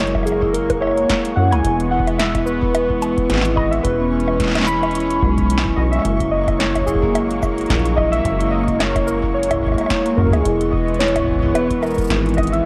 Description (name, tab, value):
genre	IDM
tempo	109 BPM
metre	4/4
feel	swing 56% on 16ths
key	E lydian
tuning	A4 = 440 Hz
part	warbly lo-fi synth keys	melody	0.0-12.7 s	G#4 to B5	-24 LUFS	equal	chorus, delay
part	warm analog pad	sustained chords	0.0-12.7 s	E3 to C#4	-28 LUFS	equal	chorus, vintage 12-bit sampler grit
part	vibraphone with soft mallets	arpeggios	0.0-12.6 s	G#3 to E4	-25 LUFS	equal	delay
part	deep acid bass	bass	0.0-12.6 s	E1 to F#2	-24 LUFS	equal	none
part	flickering grainy texture	texture	0.0-12.7 s	C#6	-35 LUFS	equal	built-in reverb
part	electro analog drum machine	drums	0.1-12.6 s	bongos, cabasa, hi-hat, snare drum	-25 LUFS	equal	none
part	electronic kick drum	drums	0.1-12.5 s	none	-26 LUFS	equal	none
room	moderate digital room reverb, RT60 1.1 s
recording	worn, warbling old tape, cassette tape, warbly pitch drift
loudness	-18 LUFS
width	mono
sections	0.0-12.7 A section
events	none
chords	0.0 F#add9; 1.6 E; 6.0 F#add9; 10.5 E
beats	0.54 1.09 | 1.65 2.19 2.75 3.30 | 3.85 4.40 4.95 5.50 | 6.05 6.60 7.15 7.70 | 8.25 8.80 9.35 9.90 | 10.45 11.00 11.55 12.10